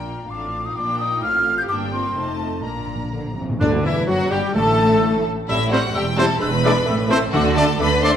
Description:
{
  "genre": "quick classical-period movement for symphony orchestra",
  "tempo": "129 BPM",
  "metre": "2/4",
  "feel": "straight",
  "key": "Bb major, G major from 3.6 s",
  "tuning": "A4 = 444 Hz",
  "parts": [
    { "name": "rich chamber violin section", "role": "melody", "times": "0.0-8.1 s", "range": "A4 to C6", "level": "-28 LUFS", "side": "left 4 dB", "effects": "none" },
    { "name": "mellow hollow silver concert flute", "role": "second line", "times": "0.0-8.1 s", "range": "D5 to G6", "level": "-25 LUFS", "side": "left 1 dB", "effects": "none" },
    { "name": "rich chamber violin section", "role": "second line", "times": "0.0-8.2 s", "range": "D4 to Bb5", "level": "-27 LUFS", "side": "left 2 dB", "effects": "none" },
    { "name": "warm studio viola section", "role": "accompaniment", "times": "0.0-8.1 s", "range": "D3 to G4", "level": "-27 LUFS", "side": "equal", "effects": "none" },
    { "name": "mellow French horn section", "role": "sustained chords", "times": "0.0-8.1 s", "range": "D3 to G4", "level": "-28 LUFS", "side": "left 4 dB", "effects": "none" },
    { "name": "dark chamber double bass section", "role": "bass", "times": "0.0-8.2 s", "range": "E1 to D2", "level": "-26 LUFS", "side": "right 3 dB", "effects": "none" },
    { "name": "warm chamber cello section", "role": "bass", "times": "0.0-8.2 s", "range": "D2 to D3", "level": "-26 LUFS", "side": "right 2 dB", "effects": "none" },
    { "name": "timpani", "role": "percussion", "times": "2.6-5.0, 7.3-8.0 s", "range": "G2 to D3", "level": "-26 LUFS", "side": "left 1 dB", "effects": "none" },
    { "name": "warm clarinet", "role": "second line", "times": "3.6-8.1 s", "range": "C4 to A4", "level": "-28 LUFS", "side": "left 1 dB", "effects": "none" },
    { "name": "warm cor anglais", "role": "second line", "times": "3.6-8.1 s", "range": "D4 to B4", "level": "-32 LUFS", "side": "equal", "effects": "none" },
    { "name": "mellow bassoon", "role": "accompaniment", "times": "3.6-8.1 s", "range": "D3 to A3", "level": "-27 LUFS", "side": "right 1 dB", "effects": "none" },
    { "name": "warm trumpet", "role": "stabs", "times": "3.6-8.1 s", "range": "D4 to D5", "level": "-25 LUFS", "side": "right 1 dB", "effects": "none" }
  ],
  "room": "wet recital hall reverb, RT60 1.9 s",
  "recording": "none",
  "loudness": "-17 LUFS",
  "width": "side -9 dB against mid",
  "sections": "0.0-3.6 A section; 3.6-8.2 B section",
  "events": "timpani fill 2.6-3.6",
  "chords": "0.3 F/A; 0.8 Bb; 1.2 F/A; 1.7 Gm; 2.2 F7; 2.6 Bb; 3.6 G5; 4.6 N.C.; 5.5 Am7; 6.4 E7; 6.9 Am; 7.3 D5",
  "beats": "0.30 | 0.77 1.23 | 1.70 2.17 | 2.65 3.13 | 3.62 4.09 | 4.56 5.02 | 5.49 5.95 | 6.41 6.87 | 7.33 7.80"
}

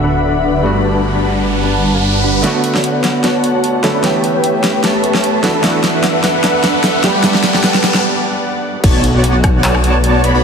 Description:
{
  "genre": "future bass",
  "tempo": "150 BPM",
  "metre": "4/4",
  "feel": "swing 53% on 16ths, half-time",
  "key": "unclear",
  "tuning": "A4 = 439 Hz",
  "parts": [
    { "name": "clear grand piano", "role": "accompaniment", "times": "0.0-8.9 s", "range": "D3 to F#5", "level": "-19 LUFS", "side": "right 2 dB", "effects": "sidechain pumping, digital delay" },
    { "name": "muted studio string section", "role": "sustained chords", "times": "0.0-10.4 s", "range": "D3 to B5", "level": "-24 LUFS", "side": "left 2 dB", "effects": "sidechain pumping, low-pass filter" },
    { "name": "big bright polysynth", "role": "riff", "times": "0.0-10.4 s", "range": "D3 to B5", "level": "-15 LUFS", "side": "equal", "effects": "wide subtle chorus, sidechain pumping, digital delay" },
    { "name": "wide detuned saw bass", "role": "bass", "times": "0.0-2.4, 8.8-10.4 s", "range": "D1 to B1", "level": "-16 LUFS", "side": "equal", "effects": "chorus, sidechain pumping" },
    { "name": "riser and impact", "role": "sound effects", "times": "0.1-10.4 s", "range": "none", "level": "-24 LUFS", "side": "left 1 dB", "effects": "none" },
    { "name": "big-room dance drum kit", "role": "drums", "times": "2.4-10.3 s", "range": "crash cymbal, handclaps, hi-hat, snare drum, woodblock", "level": "-17 LUFS", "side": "equal", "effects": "none" },
    { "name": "electronic kick drum", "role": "drums", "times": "8.8-9.5 s", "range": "none", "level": "-13 LUFS", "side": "equal", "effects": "none" }
  ],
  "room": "moderate lush hall reverb, RT60 2.1 s",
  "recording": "heavily compressed radio sound",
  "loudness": "-11 LUFS",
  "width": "side -6 dB against mid",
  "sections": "0.0-2.4 A section; 2.4-8.8 B section; 8.8-10.4 C section",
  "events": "riser 0.1-2.4, 2.4-8.0; build-up 2.4-8.8; drum fill 2.4-8.0; filter sweep on analog polysynth 2.4-8.8; break 8.0-8.8; drop 8.8-10.4; impact 8.8-10.4",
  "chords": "0.0 D69; 0.6 Gmaj7; 2.4 Bm7; 4.0 A9; 5.4 D69; 7.0 Gmaj7; 8.8 Bm7",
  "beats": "0.04 0.44 | 0.84 1.24 1.64 2.04 | 2.44 2.84 3.24 3.64 | 4.04 4.44 4.84 5.24 | 5.64 6.04 6.44 6.84 | 7.24 7.64 8.04 8.44 | 8.84 9.24 9.64 10.04"
}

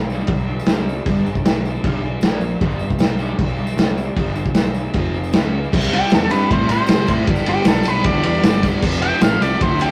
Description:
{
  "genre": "garage rock duo or trio",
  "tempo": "154 BPM",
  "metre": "4/4",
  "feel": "straight",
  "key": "G mixolydian",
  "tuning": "A4 = 445 Hz",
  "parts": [
    { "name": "crunchy overdriven guitar", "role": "riff", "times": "0.0-9.9 s", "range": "F2 to F4", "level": "-26 LUFS", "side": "equal", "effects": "none" },
    { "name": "fuzz picked electric bass", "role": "bass", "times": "0.0-9.9 s", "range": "F1 to C3", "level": "-25 LUFS", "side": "equal", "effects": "overdrive" },
    { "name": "tambourine", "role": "percussion", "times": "0.0-9.9 s", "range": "none", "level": "-48 LUFS", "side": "equal", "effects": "none" },
    { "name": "crunchy breakbeat drum kit", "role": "drums", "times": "0.3-9.9 s", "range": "crash cymbal, kick drum, ride cymbal, snare drum", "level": "-20 LUFS", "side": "equal", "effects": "vintage 12-bit sampler grit" },
    { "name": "octave-fuzz lead guitar", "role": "melody", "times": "5.9-9.9 s", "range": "G4 to G5", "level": "-23 LUFS", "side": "equal", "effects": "distortion" }
  ],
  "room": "moderate stone room reverb, RT60 1.1 s",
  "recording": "rough rehearsal-room recording, tube saturation",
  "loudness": "-18 LUFS",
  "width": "mono",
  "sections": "0.0-5.7 A section; 5.7-9.9 B section",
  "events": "none",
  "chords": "0.0 G; 2.2 Bb5; 2.6 G; 4.9 F5; 5.3 C#5; 5.7 C; 7.3 G; 8.8 F",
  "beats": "0.29 0.68 | 1.06 1.45 1.84 2.23 | 2.62 3.00 3.39 3.78 | 4.17 4.56 4.95 5.34 | 5.73 6.12 6.50 6.89 | 7.28 7.67 8.06 8.45 | 8.83 9.22 9.61"
}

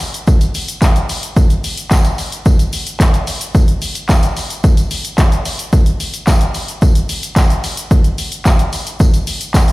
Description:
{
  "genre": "pop",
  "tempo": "110 BPM",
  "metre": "4/4",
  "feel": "straight",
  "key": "none",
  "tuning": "none",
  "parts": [
    { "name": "deep house drum kit", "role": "drums", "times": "0.0-9.7 s", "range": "handclaps, hi-hat, kick drum, shaker", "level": "-12 LUFS", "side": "equal", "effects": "none" },
    { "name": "tambourine", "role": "percussion", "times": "0.0-9.7 s", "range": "none", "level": "-30 LUFS", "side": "left 3 dB", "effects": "none" }
  ],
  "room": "little or no reverb",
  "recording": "played on a big sound system in a bare room, stone room reverb",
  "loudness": "-12 LUFS",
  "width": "side -20 dB against mid",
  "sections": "0.0-9.7 A section",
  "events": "none",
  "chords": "none",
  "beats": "0.27 0.82 | 1.36 1.91 2.46 3.00 | 3.55 4.09 4.64 5.18 | 5.73 6.27 6.82 7.37 | 7.91 8.46 9.00 9.55"
}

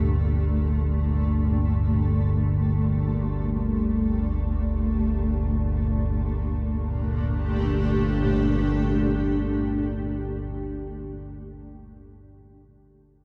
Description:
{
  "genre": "dark ambient drone",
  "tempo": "free time",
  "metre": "none",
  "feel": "none",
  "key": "G minor",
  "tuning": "A4 = 440 Hz",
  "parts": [
    { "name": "granular cloud pad", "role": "sustained chords", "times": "0.0-10.8 s", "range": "Bb2 to G4", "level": "-29 LUFS", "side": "equal", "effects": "built-in reverb" },
    { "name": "analog drone", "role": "drone", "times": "0.0-10.5 s", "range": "G1 to D2", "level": "-27 LUFS", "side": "equal", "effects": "subtle chorus" }
  ],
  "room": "wet cathedral reverb, RT60 5.2 s",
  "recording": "dark, warm production",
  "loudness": "-25 LUFS",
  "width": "mono",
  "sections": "0.0-6.2 A section; 6.2-10.1 B section",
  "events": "none",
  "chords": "0.0 Gmadd9",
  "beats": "free time"
}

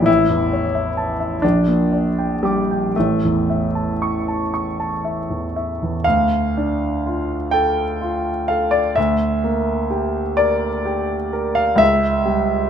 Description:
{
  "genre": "classical, romantic nocturne for solo piano",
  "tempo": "37-46 BPM (dotted quarters)",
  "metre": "12/8",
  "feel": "rubato",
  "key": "D minor",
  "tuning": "A4 = 440 Hz",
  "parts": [
    { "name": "clear grand piano", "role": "solo", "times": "0.0-12.7 s", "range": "A1 to D6", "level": "-17 LUFS", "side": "equal", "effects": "none" }
  ],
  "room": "moderate recital hall reverb, RT60 1.7 s",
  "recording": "close, detailed microphones",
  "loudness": "-17 LUFS",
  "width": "side -8 dB against mid",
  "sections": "0.0-6.0 A section; 6.0-12.7 B section",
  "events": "none",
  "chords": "0.1 A; 1.4 Gm/Bb; 2.9 A; 6.0 Dm; 9.0 Em7b5/D; 11.8 A7/C# (rootless)",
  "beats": "| 0.08 1.43 2.95 4.51 | 6.05 7.52 8.97 10.39 | 11.80"
}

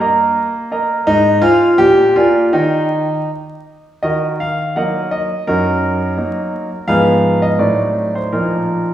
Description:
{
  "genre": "classical-period piano sonatina",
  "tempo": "83 BPM",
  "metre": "2/4",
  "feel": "straight",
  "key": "Eb major, Eb minor from 4.0 s",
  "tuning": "A4 = 436 Hz",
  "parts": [
    { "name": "clear grand piano", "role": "solo", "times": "0.0-8.9 s", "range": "Gb2 to Bb5", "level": "-13 LUFS", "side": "equal", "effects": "none" }
  ],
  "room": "wet recital hall reverb, RT60 1.6 s",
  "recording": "heard from further back in the room, vinyl crackle, studio reverb",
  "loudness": "-13 LUFS",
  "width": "side -11 dB against mid",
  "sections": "0.0-4.0 A section; 4.0-8.9 A section",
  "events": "none",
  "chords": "0.0 Eb5; 1.1 Fm7/Ab; 1.8 Bb7; 2.5 Eb; 4.0 Ebm; 5.5 Ebm/Gb; 6.9 Fm7b5/Ab; 7.6 Adim7; 8.3 Bbsus4",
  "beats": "0.34 | 1.06 1.79 | 2.53 3.29 | 4.03 4.75 | 5.47 6.17 | 6.88 7.61 | 8.34"
}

